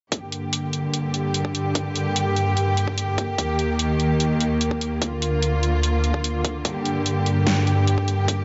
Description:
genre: heavy wobble dubstep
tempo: 147 BPM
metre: 4/4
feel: half-time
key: G minor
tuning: A4 = 441 Hz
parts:
  - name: rich symphonic string section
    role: sustained chords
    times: 0.1-8.4 s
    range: D2 to G4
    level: -23 LUFS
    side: equal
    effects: sidechain pumping
  - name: dubstep drum kit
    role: drums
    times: 0.1-8.4 s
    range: hi-hat, snare drum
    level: -28 LUFS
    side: equal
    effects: none
  - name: electronic kick drum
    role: drums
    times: 0.1-8.4 s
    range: none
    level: -31 LUFS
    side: equal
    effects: high-pass filter on kick, high-pass filter on room
room: moderate lush hall reverb, RT60 2.3 s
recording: dark, warm production, nothing above 7.8 kHz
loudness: -23 LUFS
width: mono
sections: 0.1-8.4 A section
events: none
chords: 0.1 Gm; 3.4 Eb; 5.0 Bb/D; 6.7 Gm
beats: | 0.12 0.53 0.94 1.34 | 1.75 2.16 2.57 2.98 | 3.38 3.79 4.20 4.61 | 5.02 5.43 5.83 6.24 | 6.65 7.06 7.47 7.88 | 8.28

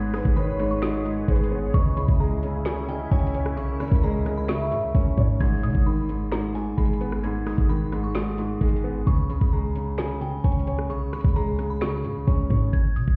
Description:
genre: hip hop, trap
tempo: 131 BPM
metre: 4/4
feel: half-time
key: unclear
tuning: A4 = 441 Hz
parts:
  - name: glassy synth bell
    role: melody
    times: 0.0-13.2 s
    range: G5 to G#6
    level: -39 LUFS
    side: equal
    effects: chorus, phaser, low-pass filter
  - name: clear concert grand piano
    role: accompaniment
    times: 0.0-12.8 s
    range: G#2 to C#5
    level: -30 LUFS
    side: equal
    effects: low-pass filter
  - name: sweeping resonant pad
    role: sustained chords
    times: 0.0-5.4 s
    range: C#3 to C#5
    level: -38 LUFS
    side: equal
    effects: chorus
  - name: clean 808-style bass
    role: bass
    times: 0.0-13.2 s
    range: G#1 to B2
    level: -29 LUFS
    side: equal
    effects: none
  - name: gliding portamento lead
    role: second line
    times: 0.1-5.4 s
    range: B4 to E5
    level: -36 LUFS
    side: equal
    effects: chorus, phaser, tape echo
  - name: trap drum kit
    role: drums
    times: 0.1-13.2 s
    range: crash cymbal, finger snaps, hi-hat, kick drum, rim click, snare drum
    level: -27 LUFS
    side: equal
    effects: none
room: little or no reverb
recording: heard muffled through a wall, stone room reverb, EQ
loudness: -24 LUFS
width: mono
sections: 0.0-5.4 A section; 5.4-13.2 B section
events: none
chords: 0.0 G#m; 1.7 C#m; 5.4 G#m; 9.1 C#5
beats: 0.37 0.82 1.28 | 1.74 2.20 2.66 3.12 | 3.57 4.03 4.49 4.95 | 5.41 5.86 6.32 6.78 | 7.24 7.70 8.15 8.61 | 9.07 9.53 9.98 10.44 | 10.90 11.36 11.82 12.28 | 12.73

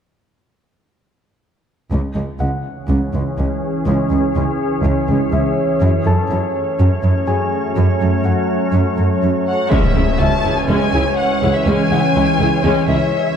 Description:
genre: cinematic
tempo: 123 BPM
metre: 4/4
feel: straight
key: C# minor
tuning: A4 = 436 Hz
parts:
  - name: organ-like drone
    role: sustained chords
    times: 2.9-13.4 s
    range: E3 to C#5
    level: -18 LUFS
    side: equal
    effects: ensemble chorus, built-in reverb, low-pass filter
  - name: rich symphonic cello section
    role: bass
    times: 1.9-13.0 s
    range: C#2 to F#2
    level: -18 LUFS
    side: right 1 dB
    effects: none
  - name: clear baby grand piano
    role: texture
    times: 2.4-13.4 s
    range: G#4 to A5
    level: -27 LUFS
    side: left 3 dB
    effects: ping-pong delay
  - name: rich symphonic violin section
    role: melody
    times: 9.5-13.4 s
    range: E5 to A5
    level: -21 LUFS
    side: left 4 dB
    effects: low-pass filter
  - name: rich studio viola section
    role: accompaniment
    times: 9.7-13.0 s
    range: G#3 to G#4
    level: -22 LUFS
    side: equal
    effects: low-pass filter
  - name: impact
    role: sound effects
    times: 9.7-11.7 s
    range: none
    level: -22 LUFS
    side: left 1 dB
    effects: none
room: wet scoring stage reverb, RT60 1.9 s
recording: dark, warm production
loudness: -14 LUFS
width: side -8 dB against mid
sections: 1.9-9.7 A section; 9.7-13.4 B section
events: filter sweep 1.9-9.7; impact 9.7-11.7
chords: 1.9 C#m; 5.8 F#m; 9.7 C#m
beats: | 1.91 2.40 2.89 3.38 | 3.87 4.35 4.84 5.33 | 5.82 6.30 6.79 7.28 | 7.77 8.26 8.74 9.23 | 9.72 10.21 10.69 11.18 | 11.67 12.16 12.64 13.13

